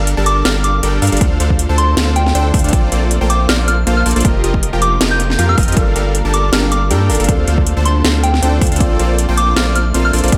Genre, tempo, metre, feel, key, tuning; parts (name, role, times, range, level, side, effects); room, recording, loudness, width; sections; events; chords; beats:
future bass; 158 BPM; 4/4; swing 54% on 16ths, half-time; A4 = 439 Hz
shimmering ambient pad; sustained chords; 0.7-10.4 s; D3 to Bb4; -30 LUFS; equal
supersaw stab; riff; 0.0-10.4 s; D3 to A5; -21 LUFS; equal; sidechain pumping, tape echo
saturated sub bass; bass; 0.0-10.4 s; F1 to G2; -18 LUFS; equal; sidechain pumping
trap drum kit; drums; 0.1-10.4 s; hi-hat, snare drum; -21 LUFS; equal; overdrive
soft synth bell; melody; 0.3-10.2 s; G5 to G6; -22 LUFS; equal; chorus, sidechain pumping, tape echo
electronic kick drum; drums; 1.2-10.4 s; -17 LUFS; equal; overdrive
felt-muted upright piano; accompaniment; 5.7-10.4 s; Bb3 to Bb4; -26 LUFS; equal; lush chorus, sidechain pumping, tape echo
moderate plate reverb, RT60 1.5 s; dreamy mix soaked in reverb; -14 LUFS; mono
0.0-10.4 A section
0.0 Gm7; 1.2 Dm7; 2.7 Bbmaj9; 4.2 F9sus4; 5.8 Gm7; 7.3 Dm7; 8.8 Bbmaj9
0.07 0.45 0.83 | 1.21 1.59 1.97 2.35 | 2.73 3.11 3.49 3.87 | 4.25 4.63 5.01 5.39 | 5.77 6.15 6.53 6.91 | 7.29 7.67 8.04 8.43 | 8.80 9.19 9.56 9.94 | 10.32